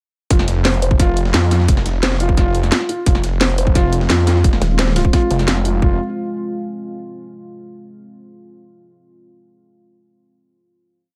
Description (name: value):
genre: dark technical drum and bass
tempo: 174 BPM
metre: 4/4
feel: straight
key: F minor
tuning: A4 = 441 Hz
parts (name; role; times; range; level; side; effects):
- felt-muted upright piano; arpeggios; 0.3-6.0 s; F4 to C5; -25 LUFS; equal; sidechain pumping, digital delay
- snarling distorted saw bass; bass; 0.3-6.0 s; F1 to F2; -19 LUFS; equal; distortion, overdrive
- breakbeat sampler-style drum kit; drums; 0.3-5.7 s; hi-hat, snare drum; -31 LUFS; equal; none
- drum and bass drum kit; drums; 0.3-5.7 s; hi-hat, snare drum; -22 LUFS; equal; none
- electronic kick drum; drums; 0.3-5.9 s; none; -17 LUFS; equal; none
- deep dark ambient pad; sustained chords; 3.6-6.0 s; Ab3 to F4; -29 LUFS; equal; chorus, built-in reverb, sidechain pumping
- vowel-sweep wobble bass; bass; 4.6-5.1 s; Eb1; -19 LUFS; equal; chorus
room: digital ambience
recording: none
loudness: -16 LUFS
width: mono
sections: 0.3-5.8 drop; 5.8-7.2 final chord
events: drop 0.3-5.8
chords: 0.3 Fm